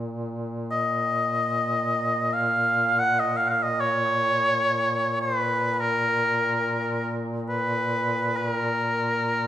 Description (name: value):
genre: caucasian folk, Caucasian lament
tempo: free time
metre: none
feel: none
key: Bb phrygian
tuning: A4 = 440 Hz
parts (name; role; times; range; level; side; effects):
- warm duduk; drone; 0.0-9.5 s; Bb2; -29 LUFS; equal; none
- clear oboe; melody; 0.7-9.5 s; Bb4 to Gb5; -22 LUFS; equal; none
room: moderate recital hall reverb, RT60 1.6 s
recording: recorded in a church or concert hall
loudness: -22 LUFS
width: side -11 dB against mid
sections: 0.0-9.5 A section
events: slowing down 5.3-9.5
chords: none